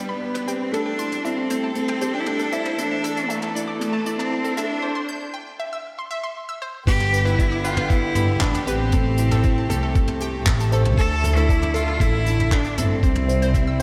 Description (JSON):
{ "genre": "piano and strings electronica", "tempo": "117 BPM", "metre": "4/4", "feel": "straight", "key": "unclear", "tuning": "A4 = 441 Hz", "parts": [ { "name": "bright cello", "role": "melody", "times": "0.0-13.8 s", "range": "A3 to A4", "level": "-27 LUFS", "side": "equal", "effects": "tape echo" }, { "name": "warm string quartet", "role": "sustained chords", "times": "0.0-13.8 s", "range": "C3 to B4", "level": "-33 LUFS", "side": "equal", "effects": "sidechain pumping" }, { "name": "felt-muted upright piano", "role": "riff", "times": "0.0-13.8 s", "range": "A3 to B5", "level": "-32 LUFS", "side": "equal", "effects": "subtle chorus, tape echo" }, { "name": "analog pluck", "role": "arpeggios", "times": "0.1-13.8 s", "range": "A4 to G6", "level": "-34 LUFS", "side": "equal", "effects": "chorus, sidechain pumping, tape echo" }, { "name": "soft brush drum kit", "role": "drums", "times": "0.3-13.8 s", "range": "crash cymbal, handclaps, hi-hat, toms", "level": "-33 LUFS", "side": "equal", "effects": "high-pass filter on hats, high-pass filter on toms, high-pass filter on cymbals, high-pass filter on snare, high-pass filter on room" }, { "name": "muted studio double bass section", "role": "bass", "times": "6.9-13.8 s", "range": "G1 to G2", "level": "-24 LUFS", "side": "equal", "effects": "sidechain pumping" }, { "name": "electronic kick drum", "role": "drums", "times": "6.9-13.6 s", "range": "none", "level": "-22 LUFS", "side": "equal", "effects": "none" } ], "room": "wet lush hall reverb, RT60 1.9 s, studio reverb", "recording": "dreamy mix soaked in reverb, high-pass filter", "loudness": "-22 LUFS", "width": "mono", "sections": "0.0-6.9 A section; 6.9-13.8 B section", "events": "build-up 0.0-6.9; break 4.8-6.9; drop 6.9-13.8", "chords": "0.0 G; 0.7 Am7; 2.8 Dsus2; 4.8 C; 6.9 G; 8.9 Am7; 11.0 Dsus2; 13.0 C", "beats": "0.21 | 0.72 1.24 1.75 2.26 | 2.78 3.29 3.80 4.31 | 4.83 5.34 5.85 6.37 | 6.88 7.39 7.90 8.42 | 8.93 9.44 9.96 10.47 | 10.98 11.49 12.01 12.52 | 13.03 13.54" }